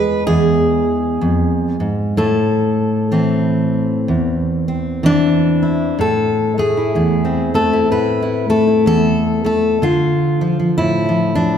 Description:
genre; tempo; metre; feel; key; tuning
folk, solo fingerstyle acoustic guitar; 63 BPM; 4/4; swing 61% on 8ths; A minor, A harmonic minor from 6.0 s; A4 = 437 Hz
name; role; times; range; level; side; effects
fingerpicked steel-string acoustic guitar; solo; 0.0-11.6 s; E2 to B4; -14 LUFS; equal; none
room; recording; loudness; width
wet concert hall reverb, RT60 1.9 s; recorded in a church or concert hall; -14 LUFS; side -8 dB against mid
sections
0.0-6.0 A section; 6.0-11.6 B section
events
none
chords
0.0 E; 2.2 Am; 9.8 Dm

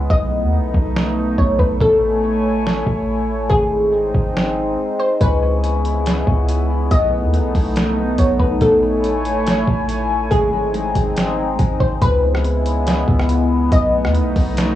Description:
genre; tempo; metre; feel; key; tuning
hip hop, atmospheric cloud-rap; 141 BPM; 4/4; half-time; C# minor; A4 = 442 Hz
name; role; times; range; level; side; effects
warbly tape-like pad; sustained chords; 0.0-14.8 s; C#3 to G#5; -20 LUFS; left 1 dB; chorus, built-in reverb, sidechain pumping, cassette tape
warm 808-style bass; bass; 0.0-14.8 s; G#1 to D#2; -20 LUFS; equal; transformer saturation
glassy wavetable pluck; melody; 0.1-14.8 s; G#4 to D#5; -20 LUFS; left 1 dB; chorus, cassette tape, analog delay, plate reverb
trip hop sampler-style drum kit; drums; 0.1-14.7 s; hi-hat, kick drum, rim click, snare drum; -20 LUFS; equal; cassette tape
concert harp; arpeggios; 5.2-14.8 s; G#3 to E4; -27 LUFS; left 4 dB; cassette tape, analog delay
room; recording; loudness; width
moderate booth ambience, RT60 0.2 s; home recording on cassette, small room ambience; -15 LUFS; side -12 dB against mid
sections
0.0-12.0 A section; 12.0-14.8 B section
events
break 0.0-5.2; silent gap 4.8-5.2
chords
0.1 B7; 1.8 Amaj7; 3.5 G#; 5.2 C#m7; 6.9 B7; 8.6 Amaj7; 10.3 G#; 12.0 C#m7; 13.7 B7

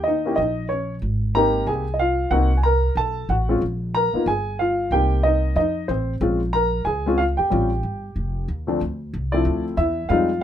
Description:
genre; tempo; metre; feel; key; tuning
jazz piano trio; 185 BPM; 4/4; swing 61% on 8ths; Bb minor; A4 = 441 Hz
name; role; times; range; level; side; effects
dark baby grand piano; melody; 0.0-10.4 s; D2 to Bb5; -20 LUFS; left 1 dB; none
upright bass; bass; 0.0-10.4 s; E#1 to F2; -24 LUFS; equal; none
room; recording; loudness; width
light reverb; minimal, uncompressed stereo recording; -19 LUFS; side -10 dB against mid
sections
0.0-8.8 A section; 8.8-10.4 B section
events
none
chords
0.0 Eb7(no3); 1.0 Abmaj9; 2.3 Cm7b5; 3.0 B5; 3.6 Bb5; 4.3 Fmadd9/G; 4.9 Cm7; 5.6 F7; 6.2 Bbm9; 7.5 Am7b13; 8.8 Dm9

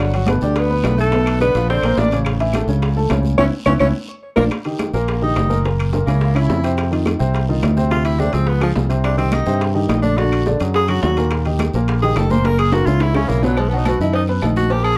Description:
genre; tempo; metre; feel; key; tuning
Afro-Cuban jazz; 212 BPM; 4/4; straight; unclear; A4 = 440 Hz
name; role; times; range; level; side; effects
breathy alto saxophone; melody; 0.0-4.4 s; F#4 to D5; -23 LUFS; equal; tape echo
edgy tenor saxophone; second line; 0.0-15.0 s; F3 to C5; -24 LUFS; equal; none
warm grand piano; accompaniment; 0.0-14.9 s; A2 to B5; -24 LUFS; equal; none
fingered electric bass; bass; 0.0-15.0 s; Gb1 to G2; -21 LUFS; equal; none
bongos and cowbell; percussion; 0.0-14.8 s; none; -30 LUFS; equal; none
congas; percussion; 0.1-15.0 s; none; -27 LUFS; equal; none
timbales and agogo bells; percussion; 0.1-15.0 s; none; -30 LUFS; equal; none
claves; percussion; 0.3-15.0 s; none; -36 LUFS; equal; none
guiro; percussion; 0.3-15.0 s; none; -44 LUFS; equal; none
room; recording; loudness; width
light reverb; dark, warm production; -17 LUFS; mono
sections
0.0-4.5 A section; 4.5-13.6 B section; 13.6-15.0 B section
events
band accent 3.4-4.5; drum fill 3.8-4.5, 12.7-13.6; tenor saxophone solo 4.5-15.0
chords
0.0 Gmaj7; 1.1 Bm7; 1.7 A#; 2.3 A; 3.4 C#m7; 3.9 A#; 4.5 Eb; 5.6 Gb7; 6.8 F5; 7.9 Dm7; 8.5 Db; 9.0 Cm9; 10.2 Bbaug7; 11.3 Eb; 12.4 Gb7; 13.6 B

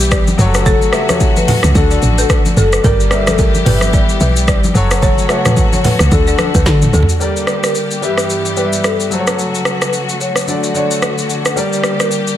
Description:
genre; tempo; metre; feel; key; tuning
afrobeats; 110 BPM; 4/4; swing 58% on 16ths; unclear; A4 = 439 Hz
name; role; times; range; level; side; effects
warm concert grand piano; accompaniment; 0.0-12.4 s; D3 to E5; -19 LUFS; left 2 dB; none
rich studio string section; sustained chords; 0.0-12.4 s; G2 to G4; -21 LUFS; equal; none
woody log drum bass; bass; 0.0-7.1 s; F#1 to D3; -14 LUFS; equal; none
afro-pop drum kit; drums; 0.0-12.4 s; hi-hat, kick drum, rim click, shaker, snare drum, toms; -15 LUFS; equal; overdrive
balafon; riff; 0.1-7.0 s; A4 to F#5; -24 LUFS; right 2 dB; tape echo
congas; percussion; 0.3-7.1 s; none; -22 LUFS; left 2 dB; none
marimba with medium mallets; melody; 0.7-12.1 s; G4 to D5; -21 LUFS; left 3 dB; tape echo
room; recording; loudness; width
studio ambience; dense, heavily limited modern master; -11 LUFS; side -12 dB against mid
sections
0.0-7.2 A section; 7.2-12.4 B section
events
drum fill 6.7-7.2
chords
0.4 F#m; 1.8 D; 2.8 Gm; 3.7 Em/G; 4.8 F#m; 6.1 D; 7.2 Gm; 8.0 Em/G; 9.1 F#m; 10.5 D; 11.6 Gm

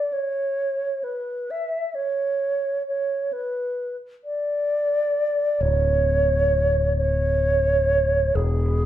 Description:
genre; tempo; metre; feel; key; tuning
post-rock; 44 BPM (dotted quarters); 6/8; straight; unclear; A4 = 438 Hz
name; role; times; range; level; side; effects
mellow hollow alto flute; melody; 0.0-8.9 s; G#4 to E5; -22 LUFS; right 1 dB; none
growling fingered electric bass; bass; 5.6-8.9 s; D1 to E1; -22 LUFS; left 1 dB; overdrive
room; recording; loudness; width
moderate large studio reverb, RT60 0.8 s; band playing live in one room; -20 LUFS; side -12 dB against mid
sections
0.0-5.6 A section; 5.6-8.9 A section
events
none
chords
0.0 N.C.; 8.3 E

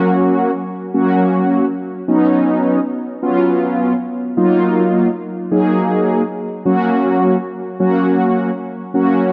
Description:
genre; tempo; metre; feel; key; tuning
pop; 105 BPM; 4/4; straight; F# major; A4 = 440 Hz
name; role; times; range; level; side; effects
mellow synth brass; solo; 0.0-9.3 s; F#3 to G#4; -16 LUFS; equal; chorus
room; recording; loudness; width
wet lush hall reverb, RT60 2.7 s; worn, warbling old tape, cassette tape, warbly pitch drift; -16 LUFS; mono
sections
0.0-9.3 A section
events
none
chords
0.0 F#; 2.1 Badd9; 4.4 D#madd9; 6.7 F#

